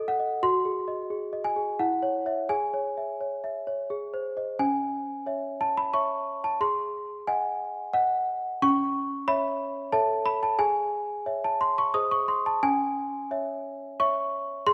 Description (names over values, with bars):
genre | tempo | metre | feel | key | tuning
classical, lullaby for celesta | 84-92 BPM | 3/4 | rubato | C# minor | A4 = 440 Hz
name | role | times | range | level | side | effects
worn celesta | solo | 0.0-14.7 s | C#4 to F#6 | -28 LUFS | equal | none
room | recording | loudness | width
moderate scoring stage reverb, RT60 1.9 s | none | -28 LUFS | mono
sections
0.0-4.6 A section; 4.6-14.7 B section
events
none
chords
0.4 G#7/F#; 1.8 C#m/E; 2.5 C#m/G#; 3.9 G#; 4.6 C#m; 6.6 G#7; 8.6 C#m; 9.9 A; 10.6 C#m/G#; 11.9 G#; 12.6 C#m